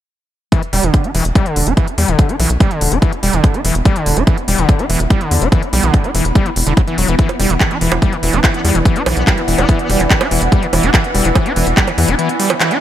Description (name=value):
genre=psychedelic trance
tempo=144 BPM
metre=4/4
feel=straight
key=E minor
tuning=A4 = 439 Hz
part: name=screaming distorted acid line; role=riff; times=0.5-12.8 s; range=D3 to E4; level=-18 LUFS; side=moving between left 4 dB and right 4 dB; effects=distortion, chorus, auto-pan, vintage 12-bit sampler grit, sidechain pumping, tape echo
part: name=electronic kick drum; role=drums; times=0.5-11.9 s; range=none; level=-13 LUFS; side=equal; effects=none
part: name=techno drum kit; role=drums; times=0.5-12.8 s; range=bongos, handclaps, hi-hat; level=-19 LUFS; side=right 1 dB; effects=none
part: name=granular cloud pad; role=texture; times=1.9-12.8 s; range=B3 to B5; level=-24 LUFS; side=right 1 dB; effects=built-in reverb, sidechain pumping
part: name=tight sequencer bass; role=bass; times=0.7-12.2 s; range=E1 to E2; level=-16 LUFS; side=equal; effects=none
part: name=bubbling stepped-filter texture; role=sustained chords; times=7.6-12.8 s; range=E3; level=-22 LUFS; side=equal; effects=chorus, built-in reverb, sidechain pumping
part: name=metallic wobble bass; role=second line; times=8.5-9.9 s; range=B3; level=-29 LUFS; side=left 4 dB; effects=none
room=light reverb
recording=none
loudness=-12 LUFS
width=side -11 dB against mid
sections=0.5-12.8 A section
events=fade-in on ambient pad 0.5-12.8; kick drops out 12.2-12.8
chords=0.5 E5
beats=| 0.52 0.94 1.35 1.77 | 2.19 2.60 3.02 3.44 | 3.85 4.27 4.69 5.10 | 5.52 5.94 6.35 6.77 | 7.19 7.60 8.02 8.44 | 8.85 9.27 9.69 10.10 | 10.52 10.94 11.35 11.77 | 12.19 12.60